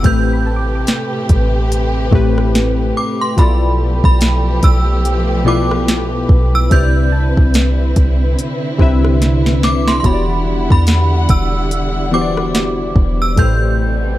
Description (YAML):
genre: contemporary R&B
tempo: 72 BPM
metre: 4/4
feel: swing 58% on 16ths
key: unclear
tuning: A4 = 440 Hz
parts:
  - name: synth chime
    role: melody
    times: 0.0-14.2 s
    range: B5 to G6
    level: -21 LUFS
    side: right 2 dB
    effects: ensemble chorus, tape echo
  - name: warm analog keys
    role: accompaniment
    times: 0.0-14.2 s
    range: A2 to E5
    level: -19 LUFS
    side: left 2 dB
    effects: chorus
  - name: warm studio string section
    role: sustained chords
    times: 0.0-14.2 s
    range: B2 to F#5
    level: -22 LUFS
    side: right 1 dB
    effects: none
  - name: clean 808-style bass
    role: bass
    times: 0.0-14.2 s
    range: E1 to E2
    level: -15 LUFS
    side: equal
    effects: none
  - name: smooth R&B drum kit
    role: drums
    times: 0.0-13.6 s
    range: hi-hat, kick drum, rim click, snare drum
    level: -14 LUFS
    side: equal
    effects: overdrive
  - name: downlifter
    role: sound effects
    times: 0.0-3.4 s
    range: none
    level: -38 LUFS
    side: right 1 dB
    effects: none
  - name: soft round pluck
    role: texture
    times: 0.0-13.8 s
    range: F#4 to D6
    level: -31 LUFS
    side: right 4 dB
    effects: chorus, tape echo
room: little or no reverb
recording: dark, warm production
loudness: -12 LUFS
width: side -15 dB against mid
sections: 0.0-14.2 A section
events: drum fill 9.2-10.0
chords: 0.0 Am9; 3.4 G13/B; 6.7 Cmaj9; 10.0 Em9; 13.4 Am9